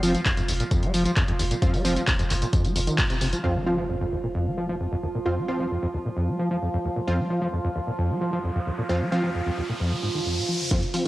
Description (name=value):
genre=driving peak-time techno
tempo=132 BPM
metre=4/4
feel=straight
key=F minor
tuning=A4 = 441 Hz
part: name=overdriven acid bass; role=riff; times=0.0-11.1 s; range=F1 to Ab3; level=-26 LUFS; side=equal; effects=lush chorus, sidechain pumping, analog delay
part: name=supersaw stab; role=stabs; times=0.0-11.0 s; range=F3 to F4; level=-29 LUFS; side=right 1 dB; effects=sidechain pumping, low-pass filter, analog delay
part: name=saturated sub bass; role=bass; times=0.0-3.3 s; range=F1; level=-29 LUFS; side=equal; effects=overdrive, sidechain pumping, low-pass filter
part: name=overtone-sweeping drone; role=drone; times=0.0-11.1 s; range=F3 to F4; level=-32 LUFS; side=right 3 dB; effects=chorus, built-in reverb, sidechain pumping
part: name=techno drum kit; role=drums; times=0.0-3.4, 10.7-11.1 s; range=handclaps, hi-hat, snare drum, tambourine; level=-28 LUFS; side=equal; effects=sidechain pumping on hats, high-pass filter on hats, sidechain pumping on perc, high-pass filter on perc, high-pass filter on snare, high-pass filter on room
part: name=electronic kick drum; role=drums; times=0.3-3.1, 10.7-10.8 s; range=none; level=-24 LUFS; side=equal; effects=none
part: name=impact and riser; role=sound effects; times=3.4-11.1 s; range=none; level=-34 LUFS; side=equal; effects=none
room=light reverb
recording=home recording on cassette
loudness=-23 LUFS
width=side -17 dB against mid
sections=0.0-3.4 A section; 3.4-10.7 B section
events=band accent 3.0; impact 3.4-5.3; riser 8.3-10.7, 10.7-11.1; drum fill 10.7-11.1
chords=0.0 F5